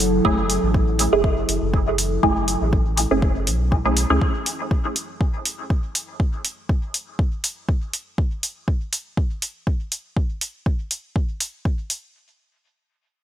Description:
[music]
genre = dub techno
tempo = 121 BPM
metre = 4/4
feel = swing 55% on 16ths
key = F# minor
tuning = A4 = 438 Hz
[part]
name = deep dark ambient pad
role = sustained chords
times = 0.0-8.1 s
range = F#3 to A4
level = -26 LUFS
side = right 1 dB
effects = chorus, built-in reverb, sidechain pumping
[part]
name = soft dub sub bass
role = bass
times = 0.0-4.2 s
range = F#1 to C#2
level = -23 LUFS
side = equal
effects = tube saturation, sidechain pumping
[part]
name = electronic hi-hat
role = drums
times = 0.0-12.0 s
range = none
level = -22 LUFS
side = equal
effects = none
[part]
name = filtered dub chord stab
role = stabs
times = 0.2-4.2 s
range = A3 to G#4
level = -23 LUFS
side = right 1 dB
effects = phaser, sidechain pumping, dub echo
[part]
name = electronic kick drum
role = drums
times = 0.2-11.8 s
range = none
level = -21 LUFS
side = equal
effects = none
[sound]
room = moderate lush hall reverb, RT60 1.9 s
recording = bright 1980s-style digital production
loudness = -20 LUFS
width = side -11 dB against mid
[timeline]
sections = 0.0-12.1 A section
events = filter sweep on ambient pad 0.0-8.2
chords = 0.0 F#m7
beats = | 0.25 0.74 1.24 1.74 | 2.23 2.73 3.22 3.72 | 4.21 4.71 5.21 5.70 | 6.20 6.69 7.19 7.69 | 8.18 8.68 9.17 9.67 | 10.16 10.66 11.16 11.65

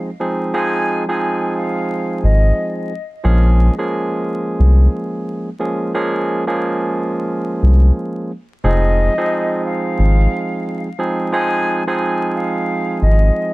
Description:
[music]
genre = hip hop, boom-bap hip-hop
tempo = 89 BPM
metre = 4/4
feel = swing 59% on 16ths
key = F minor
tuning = A4 = 441 Hz
[part]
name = silver concert flute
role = melody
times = 0.0-2.7, 8.6-13.5 s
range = Eb5 to Ab5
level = -22 LUFS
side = left 1 dB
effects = high-pass filter, low-pass filter, ping-pong delay
[part]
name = barky tine electric piano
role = accompaniment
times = 0.0-13.5 s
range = F3 to Ab4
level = -19 LUFS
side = right 1 dB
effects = high-pass filter, low-pass filter
[part]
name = round analog bass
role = bass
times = 2.2-13.3 s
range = F1 to C2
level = -11 LUFS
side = equal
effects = none
[sound]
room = little or no reverb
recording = dark, warm production, vinyl crackle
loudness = -15 LUFS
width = side -20 dB against mid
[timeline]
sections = 0.0-8.6 A section; 8.6-13.5 B section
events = none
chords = 0.0 Fm7; 3.2 Bbm7; 8.6 Fm7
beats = | 0.55 1.23 1.90 2.57 | 3.25 3.92 4.59 5.27 | 5.94 6.62 7.29 7.97 | 8.64 9.31 9.99 10.66 | 11.34 12.01 12.69 13.36

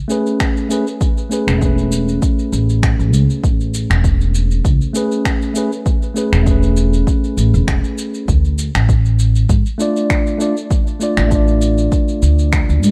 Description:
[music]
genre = sunset chillout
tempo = 99 BPM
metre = 4/4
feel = swing 54% on 16ths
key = A major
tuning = A4 = 439 Hz
[part]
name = mellow tine electric piano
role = accompaniment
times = 0.1-12.9 s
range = A3 to D5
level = -21 LUFS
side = equal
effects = delay
[part]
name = electronic shaker and finger snaps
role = drums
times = 0.1-12.9 s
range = none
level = -27 LUFS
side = equal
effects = none
[part]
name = electronic kick drum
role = drums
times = 0.4-12.7 s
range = none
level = -19 LUFS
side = equal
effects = none
[part]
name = upright bass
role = bass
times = 1.5-12.9 s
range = E1 to G#2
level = -16 LUFS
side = equal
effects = none
[sound]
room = light reverb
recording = dark, warm production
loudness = -16 LUFS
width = mono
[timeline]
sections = 0.0-12.9 A section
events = none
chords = 0.0 Amaj9; 8.3 Dm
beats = 0.40 | 1.01 1.62 2.22 2.83 | 3.43 4.04 4.65 5.25 | 5.86 6.46 7.07 7.68 | 8.28 8.89 9.49 10.10 | 10.71 11.31 11.92 12.53

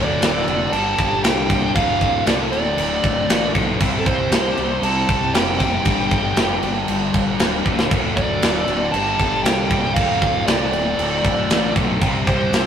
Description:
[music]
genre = hard rock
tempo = 117 BPM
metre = 4/4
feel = straight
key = unclear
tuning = A4 = 440 Hz
[part]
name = dark smooth lead guitar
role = melody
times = 0.0-12.7 s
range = A4 to A5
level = -22 LUFS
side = right 1 dB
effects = overdrive
[part]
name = crunchy overdriven guitar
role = riff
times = 0.0-12.7 s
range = D2 to C4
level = -25 LUFS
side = left 5 dB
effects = phaser
[part]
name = scooped high-gain guitar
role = riff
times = 0.0-12.7 s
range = D2 to C4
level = -29 LUFS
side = equal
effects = distortion
[part]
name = sludgy distorted guitar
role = riff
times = 0.0-12.7 s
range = D2 to C4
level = -30 LUFS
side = right 5 dB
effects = overdrive
[part]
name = fuzz fingered electric bass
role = bass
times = 0.0-12.7 s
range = D1 to C2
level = -26 LUFS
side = equal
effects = overdrive
[part]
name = tight metal drum kit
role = drums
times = 0.2-12.7 s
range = crash cymbal, kick drum, snare drum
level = -19 LUFS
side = equal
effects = none
[sound]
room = moderate stone room reverb, RT60 1.1 s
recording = rough rehearsal-room recording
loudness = -16 LUFS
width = side -8 dB against mid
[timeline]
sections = 0.0-12.7 A section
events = drum fill 7.7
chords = 0.0 Dm; 0.7 G5; 1.8 Dm; 3.8 C5; 5.9 G5; 7.9 D5; 8.9 G5; 10.0 Dm; 12.0 C5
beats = 0.21 0.73 1.24 | 1.76 2.27 2.78 3.30 | 3.81 4.32 4.84 5.35 | 5.86 6.38 6.89 7.40 | 7.92 8.43 8.94 9.45 | 9.97 10.48 10.99 11.50 | 12.02 12.53

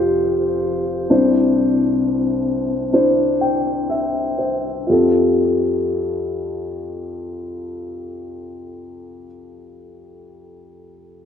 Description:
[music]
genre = pop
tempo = 59-70 BPM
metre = 4/4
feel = straight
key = F major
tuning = A4 = 439 Hz
[part]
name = dark upright piano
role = solo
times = 0.0-11.3 s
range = F1 to G5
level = -17 LUFS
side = left 1 dB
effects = analog delay
[sound]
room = wet plate reverb, RT60 2.6 s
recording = dreamy mix soaked in reverb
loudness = -16 LUFS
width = side -8 dB against mid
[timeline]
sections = 0.0-4.9 A section; 4.9-9.0 B section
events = slowing down 0.0-4.9; upright piano fill 2.9-4.9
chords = 0.0 Fadd9; 1.1 Cadd9; 4.9 Fadd9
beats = 0.22 | 1.10 2.00 2.93 3.89 | 4.89 5.91 6.93 7.96

